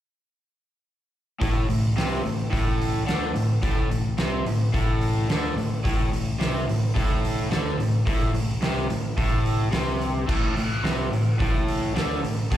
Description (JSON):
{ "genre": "blues rock power trio and southern rock", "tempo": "108 BPM", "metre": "4/4", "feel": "straight", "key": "unclear", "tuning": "A4 = 440 Hz", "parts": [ { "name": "overdriven semi-hollow guitar", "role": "riff", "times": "1.4-12.6 s", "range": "A2 to D3", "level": "-26 LUFS", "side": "equal", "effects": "spring reverb, slapback echo" }, { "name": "growling picked electric bass", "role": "bass", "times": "1.4-12.6 s", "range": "A1 to D2", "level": "-28 LUFS", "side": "equal", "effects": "overdrive" }, { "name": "oversized low-tuned drum kit", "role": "drums", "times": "1.4-12.6 s", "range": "crash cymbal, hi-hat, kick drum, snare drum", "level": "-26 LUFS", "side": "equal", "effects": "none" } ], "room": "small room ambience", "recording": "live gig heard through the venue's PA, club reverb", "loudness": "-22 LUFS", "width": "side -12 dB against mid", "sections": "1.4-12.6 A section", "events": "none", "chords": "1.4 Amadd11", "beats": "| 1.41 1.97 2.52 3.08 | 3.63 4.19 4.74 5.30 | 5.85 6.41 6.96 7.52 | 8.07 8.63 9.18 9.74 | 10.30 10.85 11.41 11.96 | 12.52" }